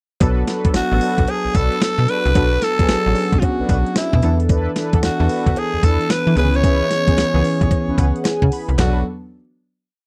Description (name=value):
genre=R&B, new jack swing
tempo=112 BPM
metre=4/4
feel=swing 64% on 16ths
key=B dorian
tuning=A4 = 440 Hz
part: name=warm analog keys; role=accompaniment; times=0.2-9.0 s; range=D3 to B5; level=-24 LUFS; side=equal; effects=chorus, phaser
part: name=mellow synth brass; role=stabs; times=0.2-9.0 s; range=C#4 to B4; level=-29 LUFS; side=equal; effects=chorus
part: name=slap-like FM bass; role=bass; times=0.2-9.0 s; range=A1 to E3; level=-21 LUFS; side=equal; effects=none
part: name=clean 12-bit digital drum machine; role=drums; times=0.2-8.9 s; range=handclaps, hi-hat, kick drum, snare drum, tambourine, toms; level=-21 LUFS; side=equal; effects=vintage 12-bit sampler grit
part: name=cowbell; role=percussion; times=0.2-9.0 s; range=none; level=-36 LUFS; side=equal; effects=none
part: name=growling tenor saxophone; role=melody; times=0.8-9.0 s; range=E4 to C#5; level=-23 LUFS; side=equal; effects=none
room=little or no reverb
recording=dry, close 1970s-style studio recording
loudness=-17 LUFS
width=mono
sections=0.2-8.8 chorus; 8.8-10.1 final chord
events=synth keys fill 7.7-8.8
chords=0.2 Bm7; 4.2 E7sus4; 6.4 C#m7; 8.8 Bm7